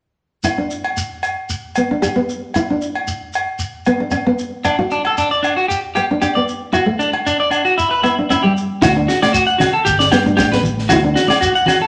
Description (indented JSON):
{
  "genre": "highlife guitar band",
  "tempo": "115 BPM",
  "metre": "4/4",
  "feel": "swing 54% on 16ths",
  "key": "D major",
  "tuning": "A4 = 440 Hz",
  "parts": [
    { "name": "nylon-string guitar", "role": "accompaniment", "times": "0.4-11.3 s", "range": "G3 to G4", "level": "-20 LUFS", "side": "equal", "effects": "none" },
    { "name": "agogo bells", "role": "percussion", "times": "0.4-11.8 s", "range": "none", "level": "-25 LUFS", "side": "equal", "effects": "none" },
    { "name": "shekere", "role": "percussion", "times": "0.4-11.8 s", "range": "none", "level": "-30 LUFS", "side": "equal", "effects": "none" },
    { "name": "electric guitar at the edge of break-up", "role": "arpeggios", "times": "4.6-11.9 s", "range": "D4 to F#5", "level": "-18 LUFS", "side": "equal", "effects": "none" },
    { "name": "fingered electric bass", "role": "bass", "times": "8.8-11.1 s", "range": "G1 to G2", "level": "-23 LUFS", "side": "equal", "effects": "none" },
    { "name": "tight funk drum kit", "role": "drums", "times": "8.8-11.8 s", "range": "kick drum, snare drum", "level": "-24 LUFS", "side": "equal", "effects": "none" },
    { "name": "congas", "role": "percussion", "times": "8.8-11.8 s", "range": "none", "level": "-25 LUFS", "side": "equal", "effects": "none" }
  ],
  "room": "wet large studio reverb, RT60 1.1 s",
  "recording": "lossy compression artefacts",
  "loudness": "-17 LUFS",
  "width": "mono",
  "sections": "0.5-8.8 A section; 8.8-11.9 B section",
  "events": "none",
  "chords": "0.5 Dsus2; 1.5 G; 2.5 Dsus2; 3.6 Bmadd9; 4.6 D; 5.7 G; 6.7 D; 7.8 Em; 8.8 D; 9.9 G; 10.9 D",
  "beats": "| 0.45 0.98 1.50 2.03 | 2.55 3.07 3.60 4.12 | 4.65 5.17 5.69 6.22 | 6.74 7.26 7.78 8.30 | 8.83 9.35 9.87 10.39 | 10.91 11.43"
}